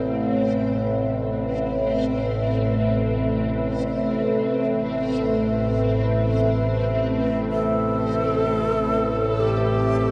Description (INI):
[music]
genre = dark ambient drone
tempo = free time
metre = none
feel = none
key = A minor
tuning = A4 = 439 Hz
[part]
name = deep dark ambient pad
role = sustained chords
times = 0.0-10.1 s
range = A3 to E5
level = -25 LUFS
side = equal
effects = chorus, built-in reverb, shimmer reverb
[part]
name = overtone-sweeping drone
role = drone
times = 0.0-10.1 s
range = A1 to A2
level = -27 LUFS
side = equal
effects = chorus, built-in reverb, phaser
[part]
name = backwards swelling texture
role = texture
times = 0.0-10.1 s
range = C4 to A4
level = -39 LUFS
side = equal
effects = built-in reverb, ensemble chorus, shimmer reverb
[part]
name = breathy bright long shakuhachi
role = melody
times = 7.5-10.1 s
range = G4 to A4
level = -28 LUFS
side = equal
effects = shimmer reverb, diffuse ambient delay
[sound]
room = wet huge ambient reverb, RT60 9.2 s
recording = dreamy mix soaked in reverb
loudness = -22 LUFS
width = mono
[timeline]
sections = 0.0-10.1 A section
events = fade-in on synth texture 0.0-10.1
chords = 0.0 Am